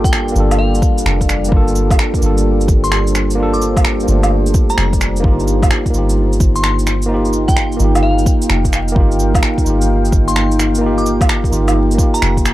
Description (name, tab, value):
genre	future garage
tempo	129 BPM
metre	4/4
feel	swing 66% on 16ths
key	unclear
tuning	A4 = 444 Hz
part	glassy synth bell	melody	0.0-12.5 s	F5 to D6	-25 LUFS	left 2 dB	chorus, phaser, analog delay
part	tine electric piano	accompaniment	0.0-12.5 s	A3 to A4	-19 LUFS	right 1 dB	sidechain pumping, analog delay
part	deep dark ambient pad	sustained chords	0.0-12.5 s	G3 to G5	-22 LUFS	equal	chorus, built-in reverb, sidechain pumping
part	soft 808-style bass	bass	0.0-12.5 s	F1 to G1	-16 LUFS	equal	sidechain pumping
part	electronic kick drum	drums	0.0-12.4 s	none	-15 LUFS	equal	overdrive
part	electronic shaker, finger snaps, cabasa and woodblock	drums	0.1-12.5 s	none	-20 LUFS	right 1 dB	none
room	digital ambience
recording	dry, gritty hardware recording, vinyl crackle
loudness	-12 LUFS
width	side -15 dB against mid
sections	0.0-12.5 A section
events	none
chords	0.0 Gm7; 5.2 Ebadd9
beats	0.12 0.59 1.05 | 1.52 1.98 2.45 2.92 | 3.38 3.85 4.31 4.78 | 5.24 5.71 6.17 6.64 | 7.10 7.57 8.03 8.50 | 8.96 9.43 9.89 10.36 | 10.82 11.29 11.75 12.22